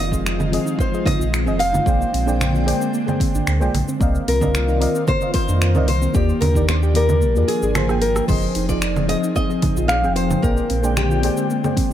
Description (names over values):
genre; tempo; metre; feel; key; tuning
sunset chillout; 112 BPM; 4/4; straight; unclear; A4 = 443 Hz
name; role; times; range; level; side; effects
nylon-string guitar; melody; 0.0-11.5 s; G4 to F5; -23 LUFS; left 1 dB; tape echo
airy breathy pad; sustained chords; 0.0-11.9 s; D3 to G5; -25 LUFS; equal; chorus, vintage 12-bit sampler grit
soft round pluck; arpeggios; 0.0-11.9 s; Bb3 to Ab4; -30 LUFS; right 3 dB; chorus, tape echo
warm sub bass; bass; 0.0-11.3 s; F1 to F2; -20 LUFS; equal; none
mellow FM electric piano; accompaniment; 0.1-11.9 s; Eb3 to G5; -25 LUFS; moving between left 3 dB and right 3 dB; chorus, auto-pan, cassette tape, tape echo
deep house drum kit; drums; 0.1-11.9 s; congas, crash cymbal, finger snaps, hi-hat, rim click, shaker; -25 LUFS; right 2 dB; none
electronic kick drum; drums; 0.1-11.9 s; none; -22 LUFS; equal; none
room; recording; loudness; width
light reverb; none; -16 LUFS; side -11 dB against mid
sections
0.0-8.3 A section; 8.3-11.9 A section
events
kick drops out 7.2-8.3; drum fill 7.8-8.3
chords
0.0 Fm7; 1.9 Bb13; 4.0 Cm11; 6.1 Ebmaj7; 7.2 Bb7; 8.3 Fm7; 10.4 Bb13